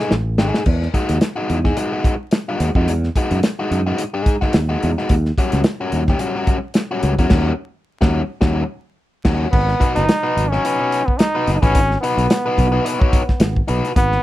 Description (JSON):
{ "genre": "funk", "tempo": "108 BPM", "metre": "4/4", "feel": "swing 56% on 16ths", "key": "unclear", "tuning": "A4 = 439 Hz", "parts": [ { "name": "biting overdriven guitar", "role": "accompaniment", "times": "0.0-13.9 s", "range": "G3 to C#5", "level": "-22 LUFS", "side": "left 2 dB", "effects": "none" }, { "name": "fingered electric bass", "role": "bass", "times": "0.1-14.2 s", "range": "F#1 to F#2", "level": "-19 LUFS", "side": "equal", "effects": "none" }, { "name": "damped 70s drum kit", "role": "drums", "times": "0.1-14.2 s", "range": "crash cymbal, hi-hat, kick drum, snare drum", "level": "-18 LUFS", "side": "equal", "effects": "none" }, { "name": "brilliant trombone", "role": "melody", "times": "9.5-14.2 s", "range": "B3 to D#4", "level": "-20 LUFS", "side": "equal", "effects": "none" } ], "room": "light reverb", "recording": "vinyl crackle", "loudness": "-16 LUFS", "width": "side -15 dB against mid", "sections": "0.7-9.5 A section; 9.5-14.2 B section", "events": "drum fill 0.0-0.7; band accent 7.3-9.5", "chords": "0.0 B6 (rootless); 0.7 Emaj9; 5.1 D#7#9; 9.5 G#m7" }